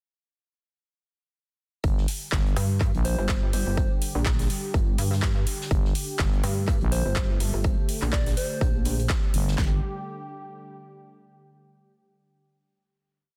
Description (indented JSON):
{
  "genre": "bass house",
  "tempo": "124 BPM",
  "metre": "4/4",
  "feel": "swing 56% on 16ths",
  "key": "G minor",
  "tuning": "A4 = 440 Hz",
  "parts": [
    { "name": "sweeping resonant pad", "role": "sustained chords", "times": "1.8-9.8 s", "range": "D3 to G4", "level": "-39 LUFS", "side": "equal", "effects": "chorus, sidechain pumping" },
    { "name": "growling FM bass", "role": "bass", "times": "1.8-9.8 s", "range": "G1 to Bb1", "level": "-28 LUFS", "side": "equal", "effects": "sidechain pumping" },
    { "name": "big-room dance drum kit", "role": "drums", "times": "1.8-9.7 s", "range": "handclaps, kick drum, snare drum", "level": "-27 LUFS", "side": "equal", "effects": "none" },
    { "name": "soft-mallet drum kit", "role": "drums", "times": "1.8-9.6 s", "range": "hi-hat, snare drum", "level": "-46 LUFS", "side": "equal", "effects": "none" },
    { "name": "big-room dance drum kit", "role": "drums", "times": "2.1-9.4 s", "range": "handclaps, hi-hat", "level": "-35 LUFS", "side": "equal", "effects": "none" },
    { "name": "pulsing pluck wobble bass", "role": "bass", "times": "2.6-9.1 s", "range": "G1 to G2", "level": "-29 LUFS", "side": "equal", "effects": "chorus, tube saturation, sidechain pumping" },
    { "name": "soft struck synth lead", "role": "melody", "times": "3.0-3.9, 6.9-9.1 s", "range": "C5 to D5", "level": "-38 LUFS", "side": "equal", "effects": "chorus, dub echo" }
  ],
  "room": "little or no reverb",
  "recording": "dense, heavily limited modern master",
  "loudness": "-25 LUFS",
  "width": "mono",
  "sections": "1.8-9.6 drop; 9.6-11.5 final chord",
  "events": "drop 1.8-9.6",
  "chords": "1.8 G5"
}